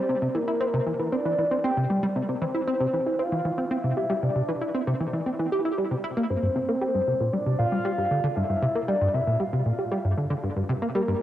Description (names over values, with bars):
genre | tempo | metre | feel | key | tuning
ambient, sequencer-driven space music | 116 BPM | 4/4 | straight | G dorian | A4 = 440 Hz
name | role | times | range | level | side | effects
soft octave-layered synth lead | melody | 0.0-11.2 s | Bb4 to G5 | -27 LUFS | equal | chorus, phaser, tape echo
plucky analog bass | riff | 0.1-11.1 s | G2 to G4 | -25 LUFS | equal | wide subtle chorus, cassette tape, tape echo
room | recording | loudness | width
wet spring reverb, RT60 2.4 s | home recording on cassette | -23 LUFS | side -12 dB against mid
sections
0.0-6.3 A section; 6.3-11.2 A section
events
none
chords
0.0 Cadd9; 6.3 Gm7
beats
| 0.09 0.61 1.12 1.64 | 2.16 2.67 3.19 3.71 | 4.23 4.74 5.26 5.78 | 6.29 6.81 7.33 7.85 | 8.36 8.88 9.40 9.92 | 10.43 10.95